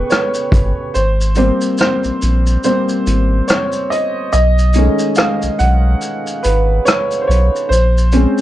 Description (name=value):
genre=lo-fi hip hop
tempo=71 BPM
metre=4/4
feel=swing 59% on 16ths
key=Ab major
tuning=A4 = 440 Hz
part: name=clear upright piano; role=accompaniment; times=0.0-8.4 s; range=C#3 to F#5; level=-16 LUFS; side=equal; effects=low-pass filter, plate reverb
part: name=hollow soft pad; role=sustained chords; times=0.0-0.9 s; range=B4 to C#6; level=-29 LUFS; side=right 3 dB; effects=chorus, low-pass filter, plate reverb
part: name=warm sub bass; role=bass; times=0.0-8.3 s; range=G1 to B1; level=-13 LUFS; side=equal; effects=none
part: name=vintage brush drum kit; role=drums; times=0.1-8.4 s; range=hi-hat, kick drum, rim click, shaker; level=-18 LUFS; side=equal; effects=none
room=light reverb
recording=dark, warm production, nothing above 10.3 kHz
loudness=-12 LUFS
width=side -14 dB against mid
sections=1.0-8.4 A section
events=kick muted 1.0-8.4; upright piano solo 1.0-8.4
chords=0.0 A9; 1.0 Abmaj7; 4.3 B13; 7.7 Bbm7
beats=0.11 | 0.95 1.80 2.64 3.49 | 4.33 5.18 6.02 6.87 | 7.71